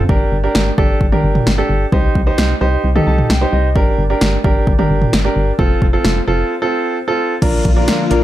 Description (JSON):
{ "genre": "synth-pop", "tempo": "131 BPM", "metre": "4/4", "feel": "straight", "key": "G minor", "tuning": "A4 = 436 Hz", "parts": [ { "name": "solid FM bass", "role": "bass", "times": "0.0-8.2 s", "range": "F1 to C2", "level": "-17 LUFS", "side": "equal", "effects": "none" }, { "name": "clear grand piano", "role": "accompaniment", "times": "0.1-8.2 s", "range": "C4 to A5", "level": "-17 LUFS", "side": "right 2 dB", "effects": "none" }, { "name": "punchy analog drum machine", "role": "drums", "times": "0.1-8.2 s", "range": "crash cymbal, hi-hat, kick drum, snare drum, toms", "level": "-15 LUFS", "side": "equal", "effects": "overdrive" }, { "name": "string machine, violins", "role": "sustained chords", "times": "7.4-8.2 s", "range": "D3 to F4", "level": "-18 LUFS", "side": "left 5 dB", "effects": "ensemble chorus" } ], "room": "digital ambience", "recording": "dark, warm production", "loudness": "-12 LUFS", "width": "side -14 dB against mid", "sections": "0.0-7.4 A section", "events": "grand piano fill 2.8-3.8; break 6.5-7.4", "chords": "0.1 Gm; 1.9 Cm; 3.8 Gm; 5.6 F; 7.4 Bb" }